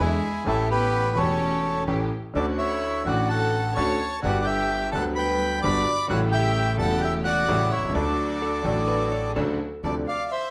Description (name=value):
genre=tango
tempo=128 BPM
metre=4/4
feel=rubato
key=D major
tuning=A4 = 441 Hz
part: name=bandoneon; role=melody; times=0.0-10.5 s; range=E4 to D6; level=-28 LUFS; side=equal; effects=none
part: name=warm studio violin section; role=second line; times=0.0-10.5 s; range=G#3 to F5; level=-35 LUFS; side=equal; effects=none
part: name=clear concert grand piano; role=accompaniment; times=0.0-10.0 s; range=E1 to G4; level=-29 LUFS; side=equal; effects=none
part: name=clear symphonic string section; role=stabs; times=0.0-9.6 s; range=F#3 to G4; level=-38 LUFS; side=equal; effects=none
part: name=upright bass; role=bass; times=0.0-10.0 s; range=E1 to E2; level=-32 LUFS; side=equal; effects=none
part: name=vintage hollow-body jazz guitar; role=second line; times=8.4-9.8 s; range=G#4 to C#5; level=-36 LUFS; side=equal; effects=none
room=moderate large studio reverb, RT60 1.0 s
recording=band playing live in one room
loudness=-24 LUFS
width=mono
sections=0.0-9.8 A section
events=none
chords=0.5 A7; 2.3 Dmaj7; 4.2 Gmaj7; 6.1 A7; 8.0 Dmaj7; 9.8 Dm7